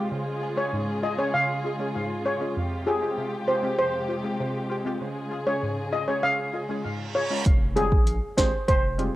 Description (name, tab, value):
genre	dancehall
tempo	98 BPM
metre	4/4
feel	straight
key	F minor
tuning	A4 = 442 Hz
part	punchy chord stab	accompaniment	0.0-9.1 s	F2 to Bb4	-31 LUFS	equal	chorus, cassette tape
part	dark studio string section	sustained chords	0.0-7.4 s	C3 to Ab4	-31 LUFS	equal	sidechain pumping, cassette tape
part	steel pan	melody	0.6-9.1 s	Ab4 to F5	-26 LUFS	equal	cassette tape, tape echo
part	reverse cymbal and impact	sound effects	6.9-9.2 s	none	-36 LUFS	right 2 dB	none
part	saturated sub bass	bass	7.5-9.1 s	F1 to Bb1	-29 LUFS	equal	none
part	afro-pop drum kit	drums	7.5-9.1 s	hi-hat, kick drum, snare drum	-22 LUFS	equal	none
room	light reverb, digital ambience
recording	home recording on cassette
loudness	-23 LUFS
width	side -16 dB against mid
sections	0.0-7.5 A section; 7.5-9.2 B section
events	reverse cymbal 6.9-7.5; impact 7.5-9.2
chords	0.1 Db; 2.6 Fmadd9; 5.0 Db; 7.5 Fmadd9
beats	| 0.11 0.72 1.34 1.95 | 2.56 3.17 3.79 4.40 | 5.01 5.62 6.24 6.85 | 7.46 8.07 8.68